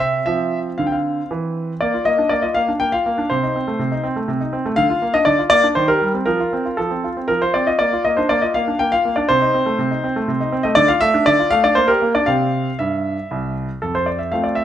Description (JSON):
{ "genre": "classical-period piano sonatina", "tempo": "120 BPM", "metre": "3/4", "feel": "straight", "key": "Bb major, F major from 10.8 s", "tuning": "A4 = 439 Hz", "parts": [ { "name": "clear concert grand piano", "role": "solo", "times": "0.0-14.6 s", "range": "C2 to G5", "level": "-16 LUFS", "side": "equal", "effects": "none" } ], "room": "moderate large studio reverb, RT60 1.2 s", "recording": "none", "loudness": "-16 LUFS", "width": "side -10 dB against mid", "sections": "0.0-1.8 A section; 1.8-13.8 B section", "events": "none", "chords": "0.3 F5; 1.8 Bb; 3.3 Cm6; 4.8 Bb/D; 5.8 Cm7/Eb; 6.3 F; 7.8 Bb; 9.3 Cm6; 10.8 Dm; 11.8 Bb6; 12.3 C; 13.8 F" }